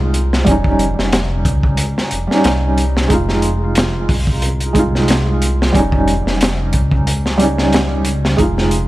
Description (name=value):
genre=trip hop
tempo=91 BPM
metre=4/4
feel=swing 54% on 16ths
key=unclear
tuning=A4 = 437 Hz
part: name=felt-muted upright piano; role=accompaniment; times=0.0-8.9 s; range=G3 to F4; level=-17 LUFS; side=right 1 dB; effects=tremolo, tape echo
part: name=dark detuned saw bass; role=bass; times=0.0-8.9 s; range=F1 to Db2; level=-18 LUFS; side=equal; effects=none
part: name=crunchy breakbeat drum kit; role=drums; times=0.1-8.9 s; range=hi-hat, kick drum, snare drum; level=-17 LUFS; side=equal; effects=none
room=small room ambience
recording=vinyl crackle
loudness=-13 LUFS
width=side -16 dB against mid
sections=0.0-8.9 A section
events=none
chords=0.5 Eb7/F; 3.1 Fm7; 5.7 Eb7/F